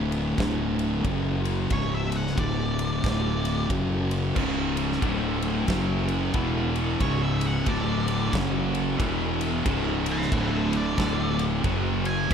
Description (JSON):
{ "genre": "stoner and doom metal", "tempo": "91 BPM", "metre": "4/4", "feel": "swing 62% on 8ths", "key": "unclear", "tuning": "A4 = 439 Hz", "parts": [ { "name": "thick fuzz guitar", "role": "riff", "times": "0.0-12.3 s", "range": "C#2 to F#3", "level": "-28 LUFS", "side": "left 8 dB", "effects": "distortion" }, { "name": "thick fuzz guitar", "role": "riff", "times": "0.0-12.3 s", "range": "C#2 to F#3", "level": "-30 LUFS", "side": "right 10 dB", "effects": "distortion" }, { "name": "fuzz fingered electric bass", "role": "bass", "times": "0.0-12.3 s", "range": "C#1 to F#1", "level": "-30 LUFS", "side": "equal", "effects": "overdrive, tube saturation" }, { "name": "big rock drum kit", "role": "drums", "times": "0.1-12.3 s", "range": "crash cymbal, kick drum, ride cymbal, snare drum", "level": "-31 LUFS", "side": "equal", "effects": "none" }, { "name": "octave-fuzz lead guitar", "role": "melody", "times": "1.7-12.3 s", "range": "C#5 to B5", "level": "-33 LUFS", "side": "right 1 dB", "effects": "distortion, ping-pong delay" }, { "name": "scooped high-gain guitar", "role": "riff", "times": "4.4-12.3 s", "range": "C#2 to F#3", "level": "-31 LUFS", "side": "right 1 dB", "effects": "distortion" } ], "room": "light reverb, small room ambience", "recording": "none", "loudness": "-23 LUFS", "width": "side -7 dB against mid", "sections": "0.0-12.3 A section", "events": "lead electric guitar solo 0.0-12.3", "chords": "0.0 D5; 1.0 F#5; 1.7 C#5; 2.4 D5; 3.7 F#5; 4.4 C#5; 5.0 D5; 5.7 F#5; 6.4 E5; 7.0 C#5; 7.7 D5; 8.3 F#5; 9.0 E5; 9.7 C#5; 10.3 D5; 11.6 F#5" }